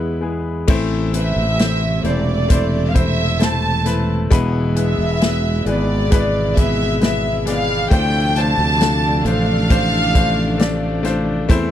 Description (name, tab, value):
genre	pop ballad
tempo	67 BPM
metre	4/4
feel	straight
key	A minor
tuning	A4 = 440 Hz
part	warm studio violin section	melody	0.0-11.1 s	B4 to A5	-21 LUFS	right 1 dB	none
part	bright concert grand piano	accompaniment	0.0-11.7 s	A2 to D5	-22 LUFS	left 4 dB	none
part	sustaining fretless electric bass	bass	0.0-11.7 s	E1 to E2	-20 LUFS	equal	none
part	warm studio string section	sustained chords	0.7-11.7 s	B2 to E4	-25 LUFS	right 3 dB	none
part	natural country drum kit	drums	0.7-11.7 s	crash cymbal, hi-hat, kick drum, snare drum	-17 LUFS	equal	none
room	little or no reverb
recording	dry, close 1970s-style studio recording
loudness	-15 LUFS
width	side -11 dB against mid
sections	0.7-11.7 A section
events	none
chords	0.0 E; 0.7 Am; 4.3 E; 7.9 Dm7